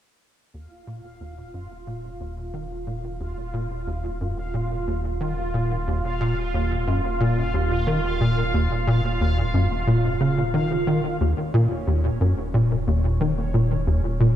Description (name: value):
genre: ambient, sequencer-driven space music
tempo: 90 BPM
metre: 4/4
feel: straight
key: unclear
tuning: A4 = 440 Hz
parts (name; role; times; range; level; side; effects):
- tight sequencer bass; riff; 0.5-14.3 s; Eb2 to Eb3; -22 LUFS; equal; ensemble chorus, tape echo
- warm sub bass; bass; 0.5-14.4 s; Eb1; -31 LUFS; equal; none
- bubbling stepped-filter texture; texture; 0.5-14.4 s; Db4 to F5; -30 LUFS; right 2 dB; chorus, built-in reverb
room: moderate lush hall reverb, RT60 2.9 s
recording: dark, warm production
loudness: -21 LUFS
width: side -11 dB against mid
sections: 0.5-11.2 A section; 11.2-14.4 B section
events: fade-in on analog synth bass 0.5-11.2; fade-in on sub bass 0.5-11.2; fade-in on synth texture 0.5-11.2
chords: 0.5 Eb5